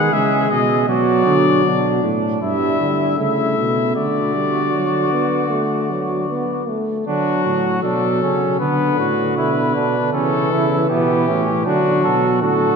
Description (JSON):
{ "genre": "classical, imitative canzona for brass ensemble", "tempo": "78 BPM", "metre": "4/4", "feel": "straight", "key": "D major", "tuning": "A4 = 439 Hz", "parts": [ { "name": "clear trumpet", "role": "melody", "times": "0.0-12.8 s", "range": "F#4 to F#5", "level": "-22 LUFS", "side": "left 8 dB", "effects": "none" }, { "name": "warm flugelhorn", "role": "second line", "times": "0.0-12.8 s", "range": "B3 to A4", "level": "-22 LUFS", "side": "right 4 dB", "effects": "none" }, { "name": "warm trombone", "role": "accompaniment", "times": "0.0-12.8 s", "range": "D3 to B3", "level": "-20 LUFS", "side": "right 1 dB", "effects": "none" }, { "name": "mellow bass trombone", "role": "bass", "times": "0.0-12.8 s", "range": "G2 to D#3", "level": "-21 LUFS", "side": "right 1 dB", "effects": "none" } ], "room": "wet church reverb, RT60 3.2 s", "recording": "nothing above 7.6 kHz", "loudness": "-15 LUFS", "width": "side -5 dB against mid", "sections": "0.0-7.1 A section; 7.1-12.8 B section", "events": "none", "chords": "0.0 E; 0.9 Bm; 2.4 Em/G; 3.2 A/C#; 4.0 D; 8.6 Bm; 10.1 A/C#; 11.7 D" }